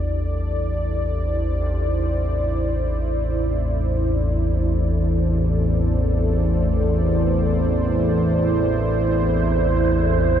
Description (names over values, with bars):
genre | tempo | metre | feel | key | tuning
dark ambient drone | free time | none | none | A minor | A4 = 440 Hz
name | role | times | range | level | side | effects
dark analog pad | sustained chords | 0.0-10.4 s | E4 to D5 | -24 LUFS | right 2 dB | chorus
carillon bells | arpeggios | 0.0-9.1 s | G3 to C4 | -44 LUFS | left 2 dB | none
analog drone | drone | 0.0-10.4 s | A1 to E2 | -20 LUFS | equal | chorus
wind-like tuned noise texture | texture | 8.9-10.4 s | C5 | -27 LUFS | right 11 dB | built-in reverb
room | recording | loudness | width
moderate huge ambient reverb, RT60 8.9 s | dark, warm production | -18 LUFS | side -9 dB against mid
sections
0.0-10.4 A section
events
none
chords
0.0 Am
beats
free time